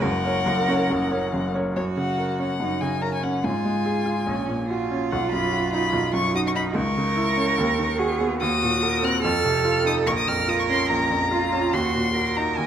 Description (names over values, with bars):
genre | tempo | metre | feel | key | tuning
quick classical-period movement for piano trio | 144 BPM | 4/4 | straight | F# major, Bb minor from 8.4 s | A4 = 439 Hz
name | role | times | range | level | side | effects
rich violin | melody | 0.0-12.7 s | C#5 to Gb6 | -26 LUFS | left 4 dB | none
rich cello | second line | 0.0-12.7 s | C#4 to Bb4 | -26 LUFS | right 7 dB | none
bright grand piano | accompaniment | 0.0-12.7 s | F#1 to C#5 | -24 LUFS | equal | none
room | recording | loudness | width
wet recital hall reverb, RT60 1.4 s | none | -20 LUFS | side -9 dB against mid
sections
0.0-1.8 A section; 1.8-12.7 B section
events
none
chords
0.0 F#; 3.4 Fm/Ab; 4.3 F#/A#; 5.1 B; 6.8 A#dim/C#; 7.6 B/D#; 8.4 Cm7b5/Eb; 9.2 F7; 10.1 Bbm; 11.7 Ebm